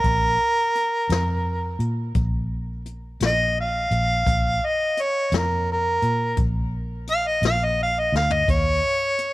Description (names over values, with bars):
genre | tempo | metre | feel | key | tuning
slow blues | 57 BPM (dotted quarters) | 12/8 | straight | Bb minor | A4 = 440 Hz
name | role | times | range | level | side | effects
warm harmonica | melody | 0.0-9.3 s | Bb4 to F5 | -21 LUFS | equal | none
vintage muted fingered electric bass | bass | 0.0-8.8 s | Bb1 to Bb2 | -25 LUFS | equal | none
jazz brush drum kit | drums | 0.0-9.3 s | hi-hat, kick drum, snare drum, toms | -27 LUFS | left 2 dB | none
room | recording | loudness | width
small room reverb | 1960s-style stereo | -20 LUFS | side -18 dB against mid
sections
0.0-9.3 A section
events
harmonica solo 0.0-9.3; drum fill 8.1-8.5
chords
0.0 Bb5; 8.5 Eb5